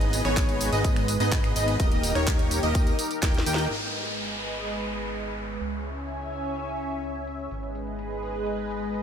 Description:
EDM, festival progressive house; 126 BPM; 4/4; straight; G# harmonic minor; A4 = 440 Hz
lush unison pad; sustained chords; 0.0-9.0 s; G#3 to G#5; -31 LUFS; equal; chorus, phaser, sidechain pumping
plucky unison lead; arpeggios; 0.0-3.7 s; C#5 to G5; -33 LUFS; equal; sidechain pumping, tape echo
dense compressed supersaw; riff; 0.0-3.7 s; A#3 to G5; -29 LUFS; equal; sidechain pumping, tape echo
fat analog bass; bass; 0.0-9.0 s; D#1 to D#2; -32 LUFS; equal; sidechain pumping
house drum kit; drums; 0.0-9.0 s; crash cymbal, finger snaps, handclaps, hi-hat, snare drum, tambourine; -32 LUFS; equal; low-pass filter on hats, low-pass filter on perc, low-pass filter on snare, low-pass filter on cymbals, low-pass filter on room
electronic kick drum; drums; 0.4-3.3 s; -24 LUFS; equal
downlifter; sound effects; 3.7-7.5 s; -35 LUFS; equal
light reverb; -24 LUFS; side -8 dB against mid
0.0-3.7 A section; 3.7-9.0 B section
drop 0.0-3.7; drum fill 3.2-3.7; band accent 3.5
0.0 G#m; 1.8 D#; 3.7 G#m; 5.6 C#m; 7.5 G#m

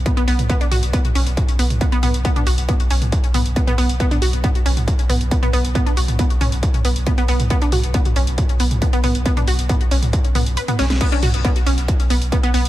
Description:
driving peak-time techno; 137 BPM; 4/4; straight; B minor; A4 = 440 Hz
warm sub bass; bass; 0.0-12.7 s; B1; -20 LUFS; equal; tube saturation, sidechain pumping, low-pass filter
wide unison pluck; riff; 0.1-12.6 s; B3 to B4; -23 LUFS; equal; overdrive, sidechain pumping, ping-pong delay
electronic kick drum; drums; 0.1-12.4 s; -18 LUFS; equal; distortion
techno drum kit; drums; 0.1-12.7 s; crash cymbal, hi-hat, snare drum, toms; -25 LUFS; right 1 dB
digital ambience; faint mains hum; -15 LUFS; side -15 dB against mid
0.0-11.0 A section; 11.0-12.7 B section
kick drops out 10.6-11.0; drum fill 10.8; drop 11.0-12.7
0.0 B5

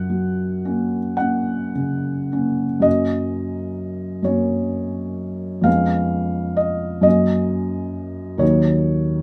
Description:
classical, romantic nocturne for solo piano; 35-45 BPM (dotted quarters); 6/8; rubato; F# major; A4 = 441 Hz
felt-muted upright piano; solo; 0.0-9.2 s; D#2 to F#5; -21 LUFS; equal
light reverb; close, detailed microphones; -21 LUFS; mono
0.0-2.9 A section; 2.9-9.2 B section
0.0 F#; 5.7 C#7/E#; 7.0 F#; 8.4 D#m7

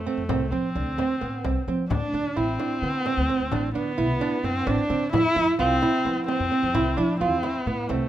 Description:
contemporary instrumental, chamber music in an uneven meter; 260 BPM (eighths); 7/8; straight; A4 = 440 Hz
dark viola; second line; 0.0-8.1 s; A3 to E4; -26 LUFS; equal
upright bass; bass; 0.0-8.0 s; A1 to F3; -29 LUFS; left 1 dB
nylon-string guitar; arpeggios; 0.1-8.1 s; B3 to F4; -26 LUFS; right 4 dB
frame drum; percussion; 0.3-8.1 s; -33 LUFS; left 4 dB
light reverb; close, detailed microphones; -22 LUFS; side -12 dB against mid
0.0-8.1 A section
0.0 F; 1.9 D7(no3); 5.1 Fmaj7(no3)

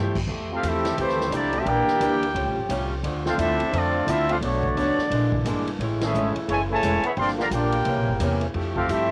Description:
jazz, big band swing; 174 BPM; 4/4; swing 62% on 8ths; F major; A4 = 442 Hz
picked acoustic archtop guitar; accompaniment; 0.0-9.1 s; G2 to C#5; -31 LUFS; equal; cassette tape
upright bass; bass; 0.0-9.1 s; E1 to G2; -30 LUFS; equal
swinging big-band drum kit; drums; 0.2-9.0 s; crash cymbal, hi-hat, kick drum, ride cymbal, snare drum; -36 LUFS; equal; cassette tape
clear saxophone section; sustained chords; 0.3-9.1 s; Db3 to G4; -37 LUFS; equal
warm trumpet section; melody; 0.5-9.1 s; A3 to C6; -28 LUFS; equal; cassette tape
clear trombone section; second line; 0.5-9.1 s; C#3 to G4; -30 LUFS; equal; cassette tape
light reverb, small room ambience; home recording on cassette; -24 LUFS; mono
0.3-9.1 A section
band accent 6.0
0.3 Fmaj9; 1.7 Em7b5; 2.3 A7alt; 3.0 Dm7; 4.4 Bm9; 5.1 Bb7#11; 5.8 Amaj7; 7.2 Gm7; 7.9 C7b9; 8.6 Fmaj9

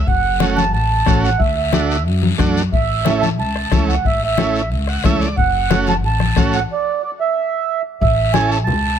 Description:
latin, cumbia; 181 BPM; 4/4; straight; A major; A4 = 439 Hz
combo organ; accompaniment; 0.0-8.6 s; A3 to F#5; -22 LUFS; right 5 dB
mellow accordion; melody; 0.1-9.0 s; D5 to A5; -19 LUFS; right 6 dB
upright bass; bass; 0.1-8.9 s; F#1 to F#2; -20 LUFS; equal
bombo; percussion; 0.1-8.5 s; -20 LUFS; left 3 dB
congas; percussion; 0.1-8.8 s; -22 LUFS; left 7 dB
guiro; percussion; 0.1-9.0 s; -29 LUFS; left 9 dB
light reverb; -14 LUFS; side -8 dB against mid
0.0-8.0 A section
transistor combo organ fill 4.7-5.4; stop 6.7-8.0
0.1 F#m; 1.4 D; 2.7 A; 5.4 F#m; 6.7 N.C.; 8.0 A

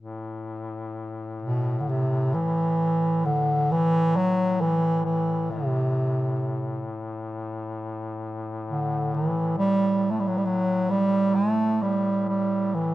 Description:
caucasian folk, Caucasian lament; 62-69 BPM; 4/4; rubato; A dorian; A4 = 440 Hz
warm duduk; drone; 0.0-12.9 s; A2; -32 LUFS; left 3 dB
mellow bass clarinet; melody; 1.4-12.9 s; B2 to A3; -22 LUFS; right 1 dB
light reverb; close, detailed microphones; -22 LUFS; side -16 dB against mid
0.0-12.9 A section

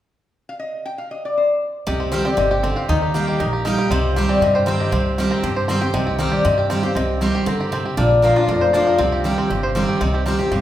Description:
bluegrass; 236 BPM; 4/4; straight; C minor; A4 = 440 Hz
lap resonator guitar; melody; 0.5-10.6 s; Bb4 to G5; -22 LUFS; left 3 dB
bluegrass banjo; melody; 1.9-10.6 s; C4 to C5; -25 LUFS; right 2 dB
picked steel-string acoustic guitar; accompaniment; 1.9-10.6 s; F2 to G4; -20 LUFS; equal
upright bass; bass; 1.9-10.6 s; F1 to G2; -24 LUFS; right 1 dB
wet recital hall reverb, RT60 1.5 s; recorded in a church or concert hall; -16 LUFS; side -12 dB against mid
0.9-1.9 A section; 1.9-10.0 B section
0.0 N.C.; 1.9 Cm; 2.9 Eb; 3.9 Cm; 8.0 Bb; 9.0 Cm

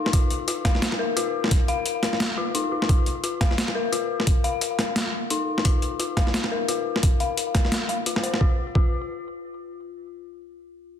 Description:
half-time drum and bass; 174 BPM; 4/4; swing 58% on 16ths, half-time; A4 = 439 Hz
dark detuned synth bell; arpeggios; 0.0-11.0 s; Eb4 to F5; -27 LUFS; left 5 dB; chorus, low-pass filter, ping-pong delay
boom bap sampler-style drum kit; drums; 0.1-8.4 s; hi-hat, snare drum; -26 LUFS; equal; overdrive
electronic kick drum; drums; 0.1-8.9 s; -21 LUFS; right 1 dB; overdrive
light reverb; dense, heavily limited modern master; -21 LUFS; side -9 dB against mid
0.0-8.4 A section; 8.4-11.0 B section
filter sweep on synth bell 0.0-8.4

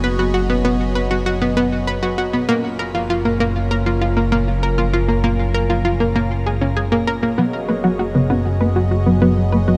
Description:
ambient, sequencer-driven space music; 98 BPM; 4/4; straight; A4 = 439 Hz
phased analog pad; sustained chords; 0.0-9.8 s; F#3 to D#5; -28 LUFS; equal; phaser, chorus, shimmer reverb
analog pluck; riff; 0.0-9.8 s; A#3 to B4; -21 LUFS; equal; chorus, tape echo, shimmer reverb
fat analog bass; bass; 0.0-9.8 s; F#1; -23 LUFS; equal
soft round pluck; arpeggios; 7.4-9.8 s; C#3 to F#4; -21 LUFS; equal; chorus, tape echo
moderate huge ambient reverb, RT60 7.9 s; -18 LUFS; mono
0.0-9.8 A section
0.0 B6/F#; 2.5 A#m/F#; 7.4 B6/F#

